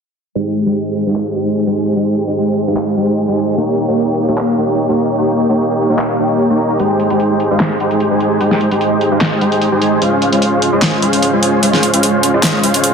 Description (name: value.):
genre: future bass.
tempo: 149 BPM.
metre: 4/4.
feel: half-time.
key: Ab major.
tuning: A4 = 443 Hz.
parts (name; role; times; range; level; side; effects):
dense compressed supersaw; riff; 0.4-12.9 s; Ab3 to Bb5; -12 LUFS; equal; low-pass filter, tape echo.
pop drum kit; drums; 1.2-12.9 s; handclaps, hi-hat, snare drum; -18 LUFS; equal; soft clipping on snare.
room: moderate huge ambient reverb, RT60 7.9 s.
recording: dense, heavily limited modern master, low-pass filter.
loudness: -12 LUFS.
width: side -6 dB against mid.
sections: 0.4-12.9 A section.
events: filter sweep 0.4-12.9.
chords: 0.4 Abmaj7; 3.6 Eb7; 6.8 Abmaj7; 10.0 Dbmaj7.